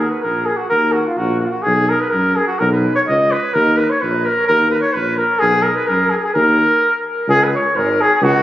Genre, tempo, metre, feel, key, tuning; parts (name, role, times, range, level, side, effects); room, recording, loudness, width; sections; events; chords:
balkan folk; 128 BPM; 2/4; straight; Eb minor; A4 = 441 Hz
warm flugelhorn; melody; 0.0-8.4 s; F4 to Eb5; -15 LUFS; equal; tape echo
warm tuba; bass; 0.0-8.4 s; Ab1 to F#2; -19 LUFS; equal
moderate scoring stage reverb, RT60 1.6 s; recorded on a phone in the room, studio reverb, compression; -13 LUFS; side -13 dB against mid
0.0-7.3 A section; 7.3-8.4 B section
stop 6.8-7.3
0.0 Eb5; 1.7 B5; 3.5 Eb5; 5.4 B5; 6.4 Eb5; 7.3 Db5